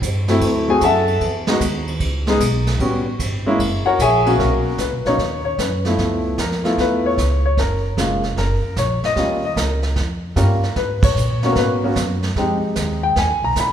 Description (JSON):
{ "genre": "jazz piano trio", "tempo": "151 BPM", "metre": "4/4", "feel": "swing 67% on 8ths", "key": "unclear", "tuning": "A4 = 439 Hz", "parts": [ { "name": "upright bass", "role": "bass", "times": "0.0-13.7 s", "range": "F1 to Bb2", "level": "-21 LUFS", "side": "right 1 dB", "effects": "none" }, { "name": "vintage brush drum kit", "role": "drums", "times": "0.0-13.7 s", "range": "brushed snare drum, crash cymbal, hi-hat, kick drum, ride cymbal, snare drum", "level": "-24 LUFS", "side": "right 2 dB", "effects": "none" }, { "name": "warm concert grand piano", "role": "melody", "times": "0.3-13.7 s", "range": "B2 to B5", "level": "-18 LUFS", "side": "left 2 dB", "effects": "none" } ], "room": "wet recital hall reverb, RT60 1.7 s", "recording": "recorded in a church or concert hall", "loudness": "-16 LUFS", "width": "side -9 dB against mid", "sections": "0.0-4.4 A section; 4.4-13.7 B section", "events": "grand piano solo 0.0-4.4; band accent 11.0", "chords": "0.4 D9; 1.2 Emaj7; 2.8 A13; 3.6 F#9; 4.4 Bmaj9; 6.0 Db7alt; 7.6 Gbmaj7; 9.2 Eb7; 10.8 Abm11; 12.4 Fm7; 13.2 E7" }